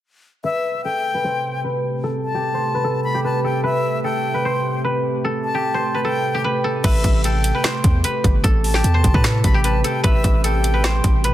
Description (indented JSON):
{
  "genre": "hip hop, trap",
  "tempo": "150 BPM",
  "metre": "4/4",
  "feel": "half-time",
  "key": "A minor",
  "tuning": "A4 = 440 Hz",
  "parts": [
    { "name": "guzheng", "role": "melody", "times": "0.4-11.3 s", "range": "G4 to C5", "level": "-23 LUFS", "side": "right 1 dB", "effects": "low-pass filter, tape echo" },
    { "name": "breathy bright concert flute", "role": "second line", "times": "0.4-11.2 s", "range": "E5 to B5", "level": "-25 LUFS", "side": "left 3 dB", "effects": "tape echo" },
    { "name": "deep dark ambient pad", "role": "sustained chords", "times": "1.2-11.3 s", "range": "B2 to G4", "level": "-26 LUFS", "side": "equal", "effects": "chorus, built-in reverb, low-pass filter" },
    { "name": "hard-hitting 808-style bass", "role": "bass", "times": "6.8-11.3 s", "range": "G1 to A2", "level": "-19 LUFS", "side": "equal", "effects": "none" },
    { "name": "trap drum kit", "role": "drums", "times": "6.8-11.3 s", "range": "crash cymbal, finger snaps, hi-hat, kick drum, snare drum", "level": "-18 LUFS", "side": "equal", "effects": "none" }
  ],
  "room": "little or no reverb",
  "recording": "dense, heavily limited modern master",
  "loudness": "-17 LUFS",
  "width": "side -13 dB against mid",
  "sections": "0.4-6.8 A section; 6.8-11.3 B section",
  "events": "filter sweep 0.4-6.8",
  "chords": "0.4 Am7"
}